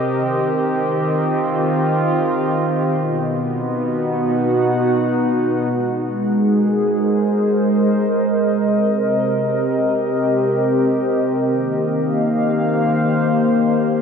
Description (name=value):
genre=ambient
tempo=free time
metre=none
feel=none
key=Ab major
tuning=A4 = 440 Hz
part: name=warbly tape-like pad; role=solo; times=0.0-14.0 s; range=B2 to F#5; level=-16 LUFS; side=equal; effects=chorus, built-in reverb, diffuse ambient delay
room=wet huge ambient reverb, RT60 8.2 s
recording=none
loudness=-16 LUFS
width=side -6 dB against mid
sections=0.0-5.7 A section; 5.7-14.0 B section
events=none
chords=0.1 Eb6; 2.9 B; 5.7 Abadd9; 8.5 Cm7; 11.3 Eb6